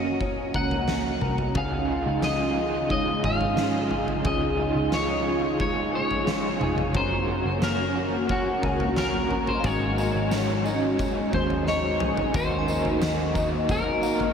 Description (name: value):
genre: dream pop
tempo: 89 BPM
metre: 4/4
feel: straight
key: Db major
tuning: A4 = 440 Hz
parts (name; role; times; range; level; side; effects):
- electric guitar at the edge of break-up; melody; 0.0-14.3 s; Gb4 to Gb5; -29 LUFS; left 1 dB; lush chorus, tape echo
- hollow soft pad; sustained chords; 0.0-14.3 s; Db3 to Ab4; -29 LUFS; right 1 dB; ensemble chorus
- electric guitar at the edge of break-up; arpeggios; 0.0-14.3 s; Ab2 to Bb4; -30 LUFS; left 2 dB; ensemble chorus, tape echo
- vintage muted picked electric bass; bass; 0.0-14.3 s; F1 to Eb2; -31 LUFS; equal; none
- oversized low-tuned drum kit; drums; 0.2-14.3 s; kick drum, snare drum, tambourine, toms; -30 LUFS; equal; none
- crunchy overdriven guitar; accompaniment; 1.5-14.3 s; Ab2 to Bb4; -31 LUFS; right 2 dB; tremolo, wide subtle chorus
- glassy synth bell; texture; 2.9-5.2, 9.5-14.3 s; Db4 to Ab5; -38 LUFS; right 1 dB; none
room: wet huge ambient reverb, RT60 8.3 s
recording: dreamy mix soaked in reverb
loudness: -22 LUFS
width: side -7 dB against mid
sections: 0.0-12.3 A section; 12.3-14.3 B section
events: drum fill 11.7-12.3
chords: 0.0 Gb; 1.6 Dbadd9; 7.0 Gb; 9.6 Ab7sus4; 12.3 Ebm